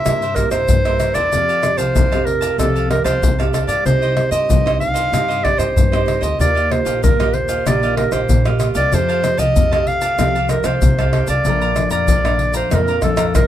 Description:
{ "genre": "samba and choro", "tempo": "95 BPM", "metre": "4/4", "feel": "straight", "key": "unclear", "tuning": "A4 = 441 Hz", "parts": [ { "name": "warm clarinet", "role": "melody", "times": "0.0-13.5 s", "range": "A4 to F5", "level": "-18 LUFS", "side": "right 1 dB", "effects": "none" }, { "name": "cavaquinho", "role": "accompaniment", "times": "0.0-13.5 s", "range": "Eb4 to Bb5", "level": "-27 LUFS", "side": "right 5 dB", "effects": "none" }, { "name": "nylon-string guitar", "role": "accompaniment", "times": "0.0-13.5 s", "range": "F2 to G4", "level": "-24 LUFS", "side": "left 1 dB", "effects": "none" }, { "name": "upright bass", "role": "bass", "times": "0.1-13.5 s", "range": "G1 to G2", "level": "-21 LUFS", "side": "equal", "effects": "none" }, { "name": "tube shaker, surdo, pandeiro and tamborim", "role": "percussion", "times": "0.1-13.5 s", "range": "none", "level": "-19 LUFS", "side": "left 1 dB", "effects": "none" } ], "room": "moderate small room reverb, RT60 0.6 s", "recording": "none", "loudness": "-14 LUFS", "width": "side -11 dB against mid", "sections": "0.0-13.5 A section", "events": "drum fill 13.2", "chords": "0.0 C7; 1.3 Fadd9; 3.9 Cm; 6.4 Ebadd9; 8.9 Fadd9; 11.5 Bbmaj7", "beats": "0.06 0.70 | 1.33 1.96 2.60 3.23 | 3.86 4.49 5.13 5.76 | 6.39 7.03 7.66 8.29 | 8.93 9.56 10.19 10.82 | 11.45 12.09 12.72 13.35" }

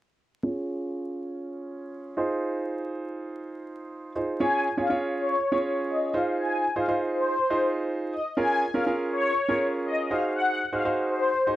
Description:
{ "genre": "pop", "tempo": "121 BPM", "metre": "4/4", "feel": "straight", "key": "Db major", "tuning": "A4 = 441 Hz", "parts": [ { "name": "warm concert grand piano", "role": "accompaniment", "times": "0.4-11.6 s", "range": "Db4 to Db5", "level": "-28 LUFS", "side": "right 2 dB", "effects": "low-pass filter" }, { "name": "filtered supersaw swell", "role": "melody", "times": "4.4-11.6 s", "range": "C5 to Ab5", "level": "-26 LUFS", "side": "left 2 dB", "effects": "slapback echo" } ], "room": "light reverb", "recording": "dry, close 1970s-style studio recording, vinyl crackle", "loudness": "-24 LUFS", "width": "side -14 dB against mid", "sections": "0.4-4.4 A section; 4.4-11.6 B section", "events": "filter sweep on grand piano 0.4-4.4", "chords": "0.4 Db; 2.2 Fm7; 4.4 Db; 6.1 Fm7; 8.4 Bbm7; 10.1 Ab7", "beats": "| 0.44 0.93 1.43 1.93 | 2.42 2.92 3.41 3.91 | 4.40 4.90 5.40 5.89 | 6.39 6.88 7.38 7.88 | 8.37 8.87 9.36 9.86 | 10.35 10.85 11.35" }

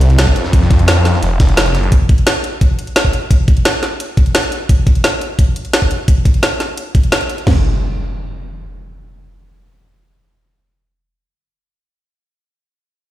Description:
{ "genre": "dark technical drum and bass", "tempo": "173 BPM", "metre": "4/4", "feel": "straight", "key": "unclear", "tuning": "A4 = 439 Hz", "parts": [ { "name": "snarling distorted saw bass", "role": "bass", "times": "0.0-1.9 s", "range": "F1 to F2", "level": "-12 LUFS", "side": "equal", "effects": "none" }, { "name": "breakbeat sampler-style drum kit", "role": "drums", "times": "0.0-1.9 s", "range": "ride cymbal, snare drum", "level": "-25 LUFS", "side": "right 1 dB", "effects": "high-pass filter on snare, high-pass filter on cymbals, high-pass filter on hats" }, { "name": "drum and bass drum kit", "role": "drums", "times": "0.0-7.5 s", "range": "hi-hat, snare drum", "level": "-17 LUFS", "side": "equal", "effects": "overdrive" }, { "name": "drum and bass drum kit", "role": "drums", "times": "0.3-7.5 s", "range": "crash cymbal, kick drum, snare drum, toms", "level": "-11 LUFS", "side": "equal", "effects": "none" }, { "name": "impact", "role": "sound effects", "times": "7.5-11.1 s", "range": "none", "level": "-18 LUFS", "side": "equal", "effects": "none" } ], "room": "light reverb, digital ambience", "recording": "played on a big sound system in a bare room, stone room reverb", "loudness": "-11 LUFS", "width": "side -14 dB against mid", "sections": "0.0-7.5 A section; 7.5-10.2 B section", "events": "none", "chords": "none", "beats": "0.18 | 0.53 0.88 1.23 1.57 | 1.92 2.27 2.61 2.96 | 3.31 3.65 4.00 4.35 | 4.69 5.04 5.39 5.73 | 6.08 6.43 6.77 7.12 | 7.47 7.82 8.16 8.51 | 8.86 9.20 9.55 9.90" }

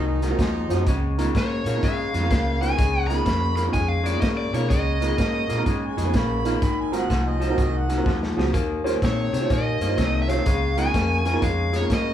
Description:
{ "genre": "electric blues shuffle", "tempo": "125 BPM", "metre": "4/4", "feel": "swing 65% on 8ths", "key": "unclear", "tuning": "A4 = 437 Hz", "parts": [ { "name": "warm harmonica", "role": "second line", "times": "0.0-1.0, 5.5-8.2 s", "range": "Eb4 to Cb6", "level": "-32 LUFS", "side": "right 5 dB", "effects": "overdrive" }, { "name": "electric guitar through a small old amp", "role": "riff", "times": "0.0-12.1 s", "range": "Ab2 to C4", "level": "-27 LUFS", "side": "left 4 dB", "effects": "none" }, { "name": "vintage muted fingered electric bass", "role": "bass", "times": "0.0-12.1 s", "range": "Ab1 to C3", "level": "-26 LUFS", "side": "equal", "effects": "none" }, { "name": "dark grand piano", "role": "accompaniment", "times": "0.2-11.9 s", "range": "Cb4 to Db5", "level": "-29 LUFS", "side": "right 5 dB", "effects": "none" }, { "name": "crunchy breakbeat drum kit", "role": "drums", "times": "0.2-12.1 s", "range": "hi-hat, kick drum, snare drum", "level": "-26 LUFS", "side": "equal", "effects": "none" }, { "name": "biting lead guitar", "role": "melody", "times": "1.4-5.6, 9.0-12.1 s", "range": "Db5 to Cb6", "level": "-27 LUFS", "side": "right 1 dB", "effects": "overdrive" } ], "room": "moderate large studio reverb, RT60 0.9 s", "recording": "band playing live in one room", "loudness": "-20 LUFS", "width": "side -10 dB against mid", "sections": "0.0-12.1 A section", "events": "drum fill 8.1-8.5", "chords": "0.0 Ab13; 0.9 Db13; 6.6 Ab13; 8.5 Eb13; 10.5 Db13", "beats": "0.39 | 0.87 1.35 1.83 2.31 | 2.79 3.26 3.74 4.22 | 4.70 5.18 5.66 6.14 | 6.62 7.10 7.58 8.06 | 8.54 9.02 9.50 9.98 | 10.46 10.94 11.42 11.90" }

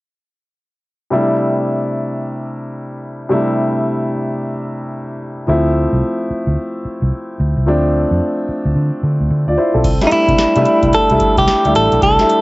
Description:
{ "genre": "R&B, new jack swing", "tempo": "110 BPM", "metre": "4/4", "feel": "swing 62% on 16ths", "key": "C major", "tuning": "A4 = 439 Hz", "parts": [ { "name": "warm concert grand piano", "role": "accompaniment", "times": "1.1-12.4 s", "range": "C3 to D5", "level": "-17 LUFS", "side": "equal", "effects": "none" }, { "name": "vintage muted fingered electric bass", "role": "bass", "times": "5.5-12.2 s", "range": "A1 to D3", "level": "-16 LUFS", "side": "equal", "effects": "none" }, { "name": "booming analog drum machine", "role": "drums", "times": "9.8-12.4 s", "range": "crash cymbal, hi-hat, kick drum, snare drum", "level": "-20 LUFS", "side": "equal", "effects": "cassette tape" }, { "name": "direct-recorded clean electric guitar", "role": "melody", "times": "10.1-12.4 s", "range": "Eb4 to A4", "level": "-12 LUFS", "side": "equal", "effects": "warbly pitch drift, cassette tape" } ], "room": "light reverb", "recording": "home recording on cassette, nothing above 7.7 kHz", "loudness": "-13 LUFS", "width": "side -21 dB against mid", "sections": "1.1-9.8 A section; 9.8-12.4 B section", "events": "none", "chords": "1.1 C69; 5.5 Dm7; 9.8 C69", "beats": "| 1.11 1.66 2.21 2.75 | 3.30 3.84 4.39 4.93 | 5.48 6.02 6.57 7.11 | 7.66 8.21 8.75 9.30 | 9.84 10.39 10.93 11.48 | 12.02" }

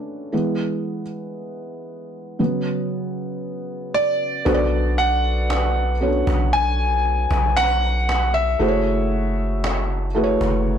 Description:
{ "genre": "contemporary R&B", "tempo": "58 BPM", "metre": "4/4", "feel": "straight", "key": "B dorian", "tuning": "A4 = 439 Hz", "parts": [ { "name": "felt-muted upright piano", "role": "accompaniment", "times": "0.0-10.8 s", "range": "C#3 to D5", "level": "-23 LUFS", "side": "equal", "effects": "none" }, { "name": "warm concert grand piano", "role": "melody", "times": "3.9-10.8 s", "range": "D5 to G#5", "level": "-22 LUFS", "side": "equal", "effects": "tape echo" }, { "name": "long sustained 808-style bass", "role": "bass", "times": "4.5-10.8 s", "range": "F#1 to B1", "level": "-22 LUFS", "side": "equal", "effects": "transformer saturation" }, { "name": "cajon", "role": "drums", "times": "4.5-10.8 s", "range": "none", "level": "-28 LUFS", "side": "left 1 dB", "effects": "none" } ], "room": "light reverb", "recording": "blown-out, overdriven recording, overdrive", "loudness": "-18 LUFS", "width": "side -8 dB against mid", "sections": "0.0-4.5 A section; 4.5-10.8 B section", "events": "felt piano solo 0.0-4.5", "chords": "0.3 E; 2.4 Bmadd9/C#; 4.5 Bm7; 8.6 F#m7", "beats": "| 0.32 1.36 2.39 3.43 | 4.46 5.50 6.53 7.57 | 8.60 9.63 10.67" }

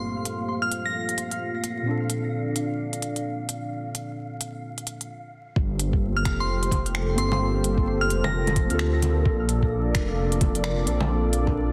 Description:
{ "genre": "future garage", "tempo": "130 BPM", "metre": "4/4", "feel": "swing 60% on 16ths", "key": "G minor", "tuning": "A4 = 440 Hz", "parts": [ { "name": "muted felt-like synth keys", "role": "accompaniment", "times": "0.0-11.7 s", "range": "G2 to A4", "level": "-34 LUFS", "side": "equal", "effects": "chorus, sidechain pumping, tape echo" }, { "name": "dark analog pad", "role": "sustained chords", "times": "0.0-11.7 s", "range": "Bb3 to D5", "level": "-33 LUFS", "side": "equal", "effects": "chorus, sidechain pumping" }, { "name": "wind-like tuned noise texture", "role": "texture", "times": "0.0-11.7 s", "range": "A4 to F5", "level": "-39 LUFS", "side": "equal", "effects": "built-in reverb" }, { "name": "organic electronic drum kit", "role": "drums", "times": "0.3-11.5 s", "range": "bongos, finger snaps, hi-hat", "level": "-32 LUFS", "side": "equal", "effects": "soft clipping on snare" }, { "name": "glassy synth bell", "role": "melody", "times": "0.6-1.2, 6.2-8.6 s", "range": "C6 to Bb6", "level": "-33 LUFS", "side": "equal", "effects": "chorus, tape echo" }, { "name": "dark detuned saw bass", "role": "bass", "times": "5.6-11.7 s", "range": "F1 to D2", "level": "-27 LUFS", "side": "equal", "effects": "sidechain pumping" }, { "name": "electronic kick drum", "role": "drums", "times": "5.6-11.5 s", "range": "none", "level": "-27 LUFS", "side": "equal", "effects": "none" } ], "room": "light reverb, digital ambience", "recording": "dense, heavily limited modern master, vinyl crackle", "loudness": "-25 LUFS", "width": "mono", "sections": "0.0-5.6 A section; 5.6-11.7 B section", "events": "stop 5.1-5.6", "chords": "0.0 Gm11; 1.9 Bbmaj7; 5.6 Gm11; 9.3 Bbmaj7", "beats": "| 0.02 0.49 0.95 1.41 | 1.87 2.33 2.79 3.25 | 3.72 4.18 4.64 5.10 | 5.56 6.02 6.49 6.95 | 7.41 7.87 8.33 8.79 | 9.26 9.72 10.18 10.64 | 11.10 11.56" }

